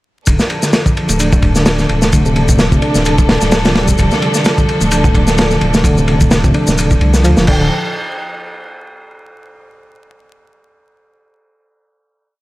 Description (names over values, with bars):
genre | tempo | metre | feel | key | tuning
breakbeat, breaks | 129 BPM | 4/4 | swing 55% on 16ths | D minor | A4 = 442 Hz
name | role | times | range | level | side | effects
clear symphonic string section | sustained chords | 0.3-7.7 s | F3 to A4 | -19 LUFS | equal | vintage 12-bit sampler grit, sidechain pumping
mellow reed electric piano | riff | 0.3-7.7 s | C3 to D4 | -16 LUFS | equal | fast tremolo, tube saturation, low-pass filter, tape echo
saturated sub bass | bass | 0.3-7.7 s | D1 to D2 | -16 LUFS | equal | none
crunchy breakbeat drum kit | drums | 0.3-7.6 s | crash cymbal, kick drum, ride cymbal, snare drum | -14 LUFS | equal | none
shaker | drums | 0.3-7.5 s | none | -24 LUFS | left 3 dB | overdrive
room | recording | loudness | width
little or no reverb | vinyl crackle | -10 LUFS | side -18 dB against mid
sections
0.3-7.7 groove; 7.7-9.6 final hit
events
filter sweep on reed electric piano 0.3-7.7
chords
0.3 Dm; 7.7 N.C.